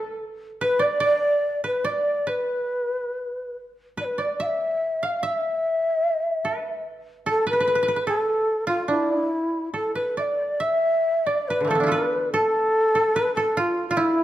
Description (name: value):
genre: japanese traditional, Japanese chamber music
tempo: 68-76 BPM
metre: 2/4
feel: rubato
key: E in sen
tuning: A4 = 439 Hz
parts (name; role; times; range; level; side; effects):
- breathy mellow shakuhachi; melody; 0.0-14.2 s; E4 to F5; -22 LUFS; equal; none
- koto; second line; 0.0-14.2 s; D3 to F5; -26 LUFS; right 3 dB; none
room: moderate recital hall reverb, RT60 1.4 s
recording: dark, warm production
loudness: -21 LUFS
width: side -13 dB against mid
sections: 0.0-10.6 A section; 10.6-14.2 B section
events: none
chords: none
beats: | 0.60 1.42 | 2.27 3.12 | 3.99 4.83 | 5.65 6.46 | 7.27 8.08 | 8.89 9.73 | 10.61 11.47 | 12.32 13.14 | 13.96